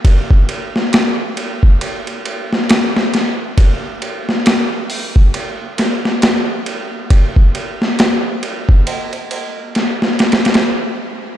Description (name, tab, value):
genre	trip hop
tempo	68 BPM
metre	4/4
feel	swing 59% on 16ths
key	none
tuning	none
part	boom bap sampler-style drum kit	drums	0.0-10.6 s	hi-hat, kick drum, ride cymbal, snare drum	-13 LUFS	equal	none
room	light reverb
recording	none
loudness	-13 LUFS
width	side -12 dB against mid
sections	0.0-10.6 A section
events	none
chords	none